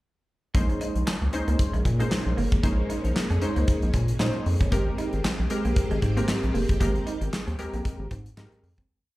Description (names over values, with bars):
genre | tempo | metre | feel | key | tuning
early-eighties boogie funk | 115 BPM | 4/4 | swing 56% on 16ths | Bb dorian | A4 = 442 Hz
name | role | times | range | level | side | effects
funky polysynth comp | accompaniment | 0.5-8.7 s | Ab3 to C5 | -30 LUFS | equal | chorus, slapback echo
string machine, full ensemble | sustained chords | 0.5-8.9 s | Ab3 to G4 | -34 LUFS | equal | ensemble chorus
semi-hollow electric guitar | riff | 0.5-8.9 s | Ab3 to Eb4 | -35 LUFS | right 4 dB | analog chorus, slapback echo
rubbery square bass | bass | 0.5-8.9 s | F1 to Bb2 | -26 LUFS | equal | none
modern studio drum kit | drums | 0.5-8.9 s | handclaps, hi-hat, kick drum, snare drum | -26 LUFS | equal | none
room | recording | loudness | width
small room reverb | live gig heard through the venue's PA, club reverb | -23 LUFS | side -18 dB against mid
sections
0.5-8.9 verse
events
fade-out 6.8-8.9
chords
0.5 Bbm11; 4.7 Abmaj9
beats
| 0.55 1.07 1.59 2.11 | 2.63 3.15 3.68 4.20 | 4.72 5.24 5.76 6.29 | 6.81 7.33 7.85 8.37